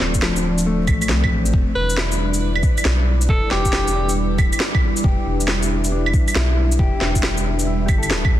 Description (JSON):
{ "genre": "future garage", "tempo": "137 BPM", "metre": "4/4", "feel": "swing 66% on 16ths", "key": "E phrygian", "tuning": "A4 = 440 Hz", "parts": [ { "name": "mellow electric guitar", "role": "accompaniment", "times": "0.0-8.4 s", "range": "F3 to A4", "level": "-27 LUFS", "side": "left 4 dB", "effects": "sidechain pumping, ping-pong delay" }, { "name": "dark analog pad", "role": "sustained chords", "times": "0.0-8.4 s", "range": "F3 to E5", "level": "-25 LUFS", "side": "right 1 dB", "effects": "chorus, sidechain pumping" }, { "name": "soft dub sub bass", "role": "bass", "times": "0.0-8.4 s", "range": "D1 to C2", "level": "-21 LUFS", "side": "equal", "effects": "sidechain pumping" }, { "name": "electronic snare drum, shaker and claves", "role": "drums", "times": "0.0-8.3 s", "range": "none", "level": "-23 LUFS", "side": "right 1 dB", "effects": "none" }, { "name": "electronic kick drum", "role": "drums", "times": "0.1-8.3 s", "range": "none", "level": "-19 LUFS", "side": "equal", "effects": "none" }, { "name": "bright alto saxophone", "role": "melody", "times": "1.8-4.1 s", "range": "G4 to B4", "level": "-26 LUFS", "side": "equal", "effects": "ping-pong delay" } ], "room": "digital ambience", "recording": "dense, heavily limited modern master, vinyl crackle", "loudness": "-16 LUFS", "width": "side -13 dB against mid", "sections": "0.0-8.4 A section", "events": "none", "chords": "0.0 Dm7; 1.5 Em7", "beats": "0.22 0.66 1.10 | 1.54 1.97 2.41 2.85 | 3.29 3.73 4.16 4.60 | 5.04 5.48 5.92 6.35 | 6.79 7.23 7.67 8.11" }